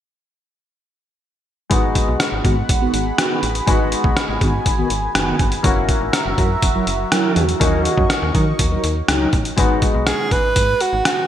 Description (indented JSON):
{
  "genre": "1980s-style pop",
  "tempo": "122 BPM",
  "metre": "4/4",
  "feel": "straight",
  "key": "G# minor",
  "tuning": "A4 = 441 Hz",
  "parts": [
    { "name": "clear baby grand piano", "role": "accompaniment", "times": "1.7-11.3 s", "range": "G#3 to F#4", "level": "-24 LUFS", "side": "left 3 dB", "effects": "analog chorus" },
    { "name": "phased analog pad", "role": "sustained chords", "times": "1.7-9.6 s", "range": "F#4 to C#6", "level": "-25 LUFS", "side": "right 2 dB", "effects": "phaser, chorus" },
    { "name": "slap-like FM bass", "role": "bass", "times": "1.7-11.0 s", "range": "F#1 to D#3", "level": "-23 LUFS", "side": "equal", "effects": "none" },
    { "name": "trip hop sampler-style drum kit", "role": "drums", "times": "1.7-11.2 s", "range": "hi-hat, kick drum, rim click", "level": "-18 LUFS", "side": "equal", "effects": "gated reverb" },
    { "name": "mellow synth brass", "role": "stabs", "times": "2.4-9.3 s", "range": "D#3 to A#4", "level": "-23 LUFS", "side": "right 1 dB", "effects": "chorus, digital delay" },
    { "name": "clear alto saxophone", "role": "melody", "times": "10.1-11.3 s", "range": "F#4 to B4", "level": "-17 LUFS", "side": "right 3 dB", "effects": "none" }
  ],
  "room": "moderate lush hall reverb, RT60 1.7 s",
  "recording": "bright 1980s-style digital production",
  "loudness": "-15 LUFS",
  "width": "side -10 dB against mid",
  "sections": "1.7-9.6 A section; 9.6-11.3 B section",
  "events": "none",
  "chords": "1.7 G#m7; 5.6 F#7; 7.6 D#m7; 9.6 G#m7"
}